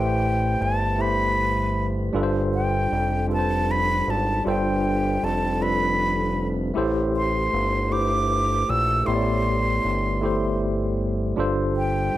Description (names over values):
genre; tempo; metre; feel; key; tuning
slow six-eight R&B; 52 BPM (dotted quarters); 6/8; straight; A minor; A4 = 439 Hz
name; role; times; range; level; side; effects
breathy concert flute; melody; 0.0-12.2 s; G5 to E6; -25 LUFS; equal; slapback echo
tine electric piano; accompaniment; 0.0-12.2 s; G3 to D5; -25 LUFS; left 1 dB; medium stereo tremolo
fat analog bass; bass; 0.0-12.1 s; F1 to Bb1; -25 LUFS; equal; none
room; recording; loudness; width
light reverb, small room ambience; none; -20 LUFS; side -14 dB against mid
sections
0.0-12.2 A section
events
none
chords
0.0 Am9; 2.1 G7sus4; 6.8 Am9; 11.4 G7sus4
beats
0.98 | 2.14 3.29 | 4.45 5.60 | 6.75 7.91 | 9.06 10.21 | 11.37